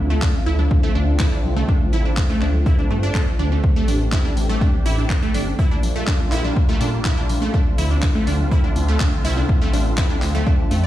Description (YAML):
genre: progressive house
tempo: 123 BPM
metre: 4/4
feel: straight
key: D minor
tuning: A4 = 435 Hz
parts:
  - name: filtered supersaw swell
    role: sustained chords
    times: 0.0-10.9 s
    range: D3 to G4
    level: -27 LUFS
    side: equal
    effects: sidechain pumping, low-pass filter
  - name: dark detuned saw bass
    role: bass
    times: 0.0-10.9 s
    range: G1 to Bb2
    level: -20 LUFS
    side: equal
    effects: sidechain pumping
  - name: wide unison pluck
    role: arpeggios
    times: 0.1-10.9 s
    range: A3 to D5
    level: -25 LUFS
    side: right 1 dB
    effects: phaser, sidechain pumping, ping-pong delay
  - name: deep house drum kit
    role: drums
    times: 0.2-10.8 s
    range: handclaps, hi-hat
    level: -30 LUFS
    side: equal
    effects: overdrive, sidechain pumping on hats
  - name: electronic kick drum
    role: drums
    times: 0.2-10.6 s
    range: none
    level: -19 LUFS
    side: equal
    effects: overdrive
  - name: congas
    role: percussion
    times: 0.3-10.8 s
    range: none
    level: -34 LUFS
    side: left 1 dB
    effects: none
room: little or no reverb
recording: played on a big sound system in a bare room, large studio reverb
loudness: -16 LUFS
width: side -13 dB against mid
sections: 0.0-10.9 A section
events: filter sweep on supersaw synth 0.0-10.9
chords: 0.0 Dm7; 3.6 Am7; 5.6 Gm7/Bb; 7.5 Dm7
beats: 0.22 0.71 1.20 | 1.69 2.17 2.66 3.15 | 3.64 4.12 4.61 5.10 | 5.59 6.08 6.56 7.05 | 7.54 8.03 8.52 9.00 | 9.49 9.98 10.47